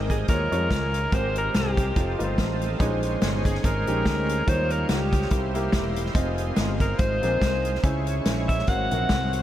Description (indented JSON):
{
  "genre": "uptempo gospel",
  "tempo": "143 BPM",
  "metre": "4/4",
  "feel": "swing 55% on 8ths",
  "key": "Ab major",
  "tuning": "A4 = 440 Hz",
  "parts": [
    { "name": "clear grand piano", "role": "accompaniment", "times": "0.0-9.4 s", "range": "Ab2 to Gb5", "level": "-31 LUFS", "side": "equal", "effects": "wide subtle chorus" },
    { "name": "bright tonewheel organ", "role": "sustained chords", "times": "0.0-9.4 s", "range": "F3 to Db5", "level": "-32 LUFS", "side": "right 2 dB", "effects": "slow rotary speaker, overdrive, chorus vibrato" },
    { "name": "fingered electric bass", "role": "bass", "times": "0.0-9.4 s", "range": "E1 to F2", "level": "-28 LUFS", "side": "equal", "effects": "none" },
    { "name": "breathy alto saxophone", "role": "melody", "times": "0.1-9.4 s", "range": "G4 to Gb5", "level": "-28 LUFS", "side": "equal", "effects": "diffuse ambient delay" },
    { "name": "natural country drum kit", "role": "drums", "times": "0.1-9.4 s", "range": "hi-hat, kick drum, snare drum", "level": "-26 LUFS", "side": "equal", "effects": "none" }
  ],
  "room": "moderate huge ambient reverb, RT60 6.8 s",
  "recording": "dreamy mix soaked in reverb",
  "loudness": "-22 LUFS",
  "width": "side -12 dB against mid",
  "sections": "0.0-9.4 A section",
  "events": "none",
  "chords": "0.3 Eb9sus4; 1.1 Abmaj9; 2.0 F7; 2.8 Bbm11; 4.5 Eb9; 5.3 C7; 6.2 Fm7; 7.8 Dbm; 8.7 Ab13"
}